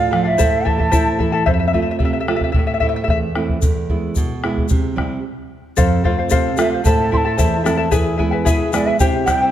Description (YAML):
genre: andean folk, Andean ensemble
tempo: 111 BPM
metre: 2/4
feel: straight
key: A minor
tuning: A4 = 442 Hz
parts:
  - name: breathy mellow large quena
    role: melody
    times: 0.0-1.2, 6.6-9.5 s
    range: D5 to C6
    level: -20 LUFS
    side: right 3 dB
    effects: none
  - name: charango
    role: accompaniment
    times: 0.0-3.2, 5.8-9.5 s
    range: E4 to A5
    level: -20 LUFS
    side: left 5 dB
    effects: none
  - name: nylon-string guitar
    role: accompaniment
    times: 0.0-9.5 s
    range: E2 to F4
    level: -20 LUFS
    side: right 3 dB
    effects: none
  - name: bombo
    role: percussion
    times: 0.1-9.4 s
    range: none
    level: -19 LUFS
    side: equal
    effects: none
  - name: egg shaker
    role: percussion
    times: 0.4-1.1, 3.6-9.4 s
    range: none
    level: -32 LUFS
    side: left 9 dB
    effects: none
room: moderate scoring stage reverb, RT60 1.9 s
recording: dark, warm production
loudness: -15 LUFS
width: side -11 dB against mid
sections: 0.0-1.5 A section; 1.5-5.8 B section; 5.8-9.5 C section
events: charango solo 1.5-5.8; stop 5.2-5.8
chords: 0.4 Am; 1.5 F; 2.5 Am; 3.6 E; 4.7 C; 5.8 F; 6.9 Am; 7.9 E; 9.0 C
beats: | 0.39 0.93 | 1.47 2.00 | 2.54 3.08 | 3.62 4.16 | 4.70 5.24 | 5.78 6.32 | 6.86 7.39 | 7.93 8.47 | 9.01